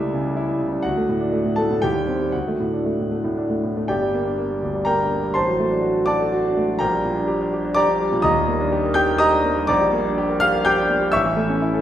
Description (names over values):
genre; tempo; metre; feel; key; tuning
classical, virtuoso piano study; 124 BPM; 3/4; rubato; G minor; A4 = 440 Hz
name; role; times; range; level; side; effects
clear concert grand piano; solo; 0.0-11.8 s; Eb1 to G6; -18 LUFS; equal; none
room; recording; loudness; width
wet recital hall reverb, RT60 1.5 s; recorded in a church or concert hall; -18 LUFS; side -11 dB against mid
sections
0.0-3.9 A section; 3.9-11.8 B section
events
none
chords
0.0 A7/C#; 0.8 D; 1.8 Cm/Eb; 2.3 D; 3.9 Gm; 5.4 D7/A; 6.8 Gm/Bb; 8.2 Ebmaj7; 9.7 Gm/Bb; 11.1 A